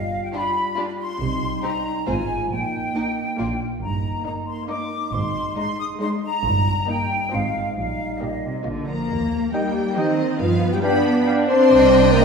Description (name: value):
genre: cinematic, playful, whimsical film cue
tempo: 137 BPM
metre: 3/4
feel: straight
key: Eb major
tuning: A4 = 438 Hz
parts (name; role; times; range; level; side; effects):
- bright flute section; second line; 0.0-8.7 s; Eb5 to Eb6; -26 LUFS; left 1 dB; none
- warm French horn section; sustained chords; 0.0-12.2 s; F3 to C5; -23 LUFS; left 2 dB; none
- rich studio cello section; bass; 0.0-12.2 s; G2 to C4; -25 LUFS; right 1 dB; none
- rich studio double bass section; bass; 0.0-12.2 s; G1 to G2; -27 LUFS; right 3 dB; none
- rich studio violin section; melody; 0.3-12.2 s; G4 to C6; -33 LUFS; left 5 dB; none
- warm studio violin section; second line; 0.3-12.2 s; Eb4 to G5; -33 LUFS; left 2 dB; none
- warm studio viola section; accompaniment; 0.3-12.2 s; Ab3 to D4; -27 LUFS; equal; none
- warm clarinet; second line; 9.5-12.2 s; Eb5 to F5; -32 LUFS; equal; none
- warm oboe; second line; 9.5-12.2 s; G5; -31 LUFS; equal; none
- warm bassoon; accompaniment; 9.5-12.2 s; C4 to Eb4; -29 LUFS; right 3 dB; none
room: wet scoring stage reverb, RT60 1.5 s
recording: heard from further back in the room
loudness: -19 LUFS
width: side -5 dB against mid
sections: 0.0-9.1 A section; 9.1-12.2 A section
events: none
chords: 0.0 G7; 1.2 Cm; 2.1 Fm/Ab; 2.5 Eb/Bb; 3.4 Bb; 3.8 Eb/G; 5.1 Ab; 6.5 Eb/G; 7.3 Fm7/Ab; 7.8 Eb/Bb; 8.7 Bb; 9.1 Eb; 10.4 G7; 11.7 Cm